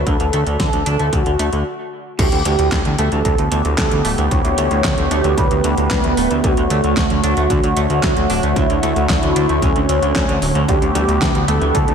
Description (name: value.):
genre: synthwave.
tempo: 113 BPM.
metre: 4/4.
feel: straight.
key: D major.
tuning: A4 = 436 Hz.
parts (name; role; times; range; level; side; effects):
wide unison lead; melody; 0.0-11.9 s; C#4 to C#5; -21 LUFS; right 1 dB; wide subtle chorus, tape echo.
phased analog pad; sustained chords; 0.0-11.9 s; D3 to C#5; -20 LUFS; right 1 dB; phaser, chorus, sidechain pumping.
fat analog bass; bass; 0.0-11.9 s; D1 to D2; -19 LUFS; equal; none.
semi-hollow electric guitar; riff; 0.1-11.9 s; A2 to D4; -26 LUFS; right 1 dB; wide subtle chorus, tape echo.
electronic kick drum; drums; 0.1-11.9 s; none; -20 LUFS; equal; studio reverb.
pop drum kit; drums; 0.1-11.9 s; crash cymbal, handclaps, hi-hat, snare drum; -24 LUFS; equal; studio reverb.
wide unison pluck; arpeggios; 10.7-11.9 s; D3 to A3; -26 LUFS; right 2 dB; none.
room: moderate lush hall reverb, RT60 1.9 s.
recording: dreamy mix soaked in reverb.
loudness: -14 LUFS.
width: side -7 dB against mid.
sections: 0.0-2.2 A section; 2.2-11.9 B section.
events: stop 1.7-2.2.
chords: 0.0 Dmaj7; 2.2 A7sus4/D; 6.4 Dmaj7; 10.7 A7sus4/D.